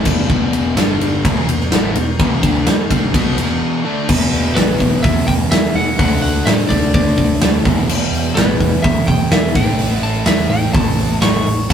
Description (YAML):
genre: hard rock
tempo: 126 BPM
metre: 4/4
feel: straight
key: E minor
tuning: A4 = 440 Hz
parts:
  - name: cranked stack guitar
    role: riff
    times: 0.0-11.7 s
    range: E2 to D4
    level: -23 LUFS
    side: right 3 dB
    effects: overdrive
  - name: crunchy overdriven guitar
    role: riff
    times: 0.0-11.7 s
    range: E2 to D4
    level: -21 LUFS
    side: left 2 dB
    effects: none
  - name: overdriven picked electric bass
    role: bass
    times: 0.1-11.7 s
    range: E1 to A2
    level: -22 LUFS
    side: equal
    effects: none
  - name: big rock drum kit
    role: drums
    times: 0.1-11.7 s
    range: crash cymbal, hi-hat, kick drum, ride cymbal, snare drum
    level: -15 LUFS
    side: equal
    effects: none
  - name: lightly driven lead guitar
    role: melody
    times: 4.6-11.7 s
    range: B4 to C#6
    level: -21 LUFS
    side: left 2 dB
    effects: none
room: light reverb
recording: rough rehearsal-room recording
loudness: -13 LUFS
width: side -8 dB against mid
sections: 0.0-4.1 A section; 4.1-11.7 B section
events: break 3.6-4.1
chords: 0.1 E5; 0.8 G5; 1.2 Em; 4.1 E5; 6.0 D5; 7.7 E5; 9.6 A